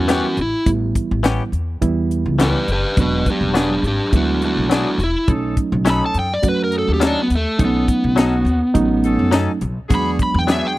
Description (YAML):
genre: straight-eighth soul blues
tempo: 104 BPM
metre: 4/4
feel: swing 55% on 16ths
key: unclear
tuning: A4 = 440 Hz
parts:
  - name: overdriven slide guitar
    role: melody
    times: 0.0-10.8 s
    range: A3 to B5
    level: -19 LUFS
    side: equal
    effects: none
  - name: bright reed electric piano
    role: accompaniment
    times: 0.0-10.7 s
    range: E3 to F#4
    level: -21 LUFS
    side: right 4 dB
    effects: none
  - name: upright bass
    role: bass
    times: 0.0-10.6 s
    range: E1 to F#2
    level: -22 LUFS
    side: equal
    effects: none
  - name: direct-recorded clean electric guitar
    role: stabs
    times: 0.1-10.7 s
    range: E3 to A4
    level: -21 LUFS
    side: left 4 dB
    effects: analog chorus
  - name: tight funk drum kit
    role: drums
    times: 0.1-10.6 s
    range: hi-hat, kick drum, snare drum, tambourine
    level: -18 LUFS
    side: left 1 dB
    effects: none
  - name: bright horn section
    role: sustained chords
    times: 5.3-10.8 s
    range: C#4 to A4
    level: -29 LUFS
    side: left 2 dB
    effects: none
room: small room ambience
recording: dry, close 1970s-style studio recording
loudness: -15 LUFS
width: side -17 dB against mid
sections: 0.0-10.8 A section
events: electric slide guitar solo 0.0-10.8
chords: 0.0 A9; 3.0 E9; 5.3 B9; 9.9 E9